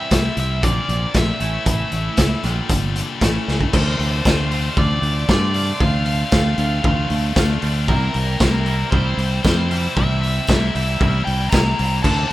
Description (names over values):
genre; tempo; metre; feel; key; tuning
indie rock; 116 BPM; 4/4; straight; D minor; A4 = 438 Hz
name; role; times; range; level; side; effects
biting overdriven guitar; melody; 0.0-12.3 s; Bb4 to Bb5; -25 LUFS; equal; none
scooped high-gain guitar; riff; 0.0-12.3 s; A2 to G4; -26 LUFS; left 8 dB; distortion
twangy electric guitar; riff; 0.0-12.3 s; A2 to A4; -30 LUFS; right 8 dB; lush chorus
fingered electric bass; bass; 0.1-12.3 s; G1 to G2; -20 LUFS; equal; none
raw garage drum kit; drums; 0.1-12.3 s; crash cymbal, hi-hat, kick drum, snare drum; -20 LUFS; equal; none
tambourine; percussion; 4.3-11.6 s; none; -36 LUFS; right 5 dB; none
room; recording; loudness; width
little or no reverb; rough home demo mix; -16 LUFS; side -16 dB against mid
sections
0.0-3.7 A section; 3.7-12.3 B section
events
drum fill 3.5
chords
0.0 C; 0.6 Bbadd9; 1.4 A; 2.4 Gm7; 3.2 A; 3.7 Dm7; 7.9 C7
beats
0.12 0.64 1.15 | 1.67 2.19 2.70 3.22 | 3.74 4.26 4.78 5.29 | 5.81 6.33 6.85 7.37 | 7.89 8.41 8.93 9.44 | 9.96 10.48 11.00 11.52 | 12.04